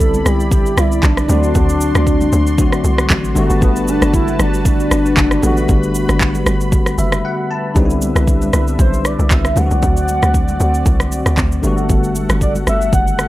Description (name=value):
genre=amapiano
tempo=116 BPM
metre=4/4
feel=swing 55% on 16ths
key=G major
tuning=A4 = 443 Hz
part: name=warm velvety synth lead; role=melody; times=0.0-13.3 s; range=B3 to F#5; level=-20 LUFS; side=equal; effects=chorus
part: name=bell-like tine electric piano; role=accompaniment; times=0.0-13.3 s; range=D3 to A5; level=-19 LUFS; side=left 2 dB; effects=ensemble chorus
part: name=warm analog pad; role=sustained chords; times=0.0-13.3 s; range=A3 to C6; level=-26 LUFS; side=equal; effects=chorus, sidechain pumping
part: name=hollow log drum bass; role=bass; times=0.0-13.3 s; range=F#1 to D2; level=-17 LUFS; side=equal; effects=none
part: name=afro-pop drum kit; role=drums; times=0.0-13.3 s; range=handclaps, kick drum, rim click, shaker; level=-16 LUFS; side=equal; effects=none
part: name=congas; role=percussion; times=0.1-13.1 s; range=none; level=-27 LUFS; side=right 1 dB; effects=none
room=little or no reverb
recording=dry, gritty hardware recording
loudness=-12 LUFS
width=side -16 dB against mid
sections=0.0-7.8 A section; 7.8-13.3 B section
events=drop 0.0-7.8; tine electric piano fill 6.7-7.8; break 7.2-7.8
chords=0.0 Cmaj9; 1.3 D7; 3.4 Gmaj9; 7.8 Cmaj9; 9.6 D7; 11.6 Gmaj9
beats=0.00 0.52 1.03 | 1.55 2.07 2.58 3.10 | 3.62 4.14 4.65 5.17 | 5.69 6.21 6.72 7.24 | 7.76 8.27 8.79 9.31 | 9.83 10.34 10.86 11.38 | 11.89 12.41 12.93